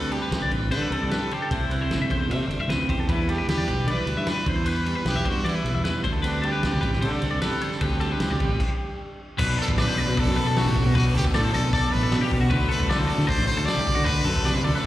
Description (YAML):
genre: math rock and midwest emo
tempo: 152 BPM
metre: 4/4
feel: straight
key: unclear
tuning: A4 = 444 Hz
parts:
  - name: brilliant trumpet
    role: melody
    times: 0.0-14.9 s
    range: D4 to D5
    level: -29 LUFS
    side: equal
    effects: slapback echo
  - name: twelve-string electric guitar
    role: accompaniment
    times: 0.0-9.2 s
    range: C3 to G4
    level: -30 LUFS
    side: right 4 dB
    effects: none
  - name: twelve-string electric guitar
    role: arpeggios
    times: 0.0-14.8 s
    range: F#4 to E5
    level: -30 LUFS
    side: left 4 dB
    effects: wide subtle chorus, slapback echo
  - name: fuzz fingered electric bass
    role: bass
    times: 0.0-14.7 s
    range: G1 to E3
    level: -25 LUFS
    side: equal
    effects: overdrive
  - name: loose indie drum kit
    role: drums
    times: 0.1-14.8 s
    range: crash cymbal, hi-hat, kick drum, ride cymbal, snare drum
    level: -28 LUFS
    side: equal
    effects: none
  - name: overdriven electric guitar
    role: riff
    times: 9.4-14.9 s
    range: B2 to D5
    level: -28 LUFS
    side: equal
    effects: none
room: little or no reverb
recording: live gig heard through the venue's PA, recital hall reverb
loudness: -21 LUFS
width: side -14 dB against mid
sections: 0.0-9.4 A section; 9.4-14.9 B section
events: stop 8.6-9.4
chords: 0.0 D7sus4; 1.5 Am7; 3.1 Em7; 4.5 Cmaj7; 6.1 D7sus4; 9.4 Bm7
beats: 0.32 0.72 1.11 | 1.51 1.91 2.30 2.70 | 3.09 3.49 3.88 4.28 | 4.67 5.07 5.46 5.85 | 6.25 6.64 7.04 7.43 | 7.82 8.22 8.61 9.00 | 9.39 9.78 10.17 10.56 | 10.95 11.34 11.73 12.12 | 12.51 12.90 13.29 13.68 | 14.07 14.46 14.84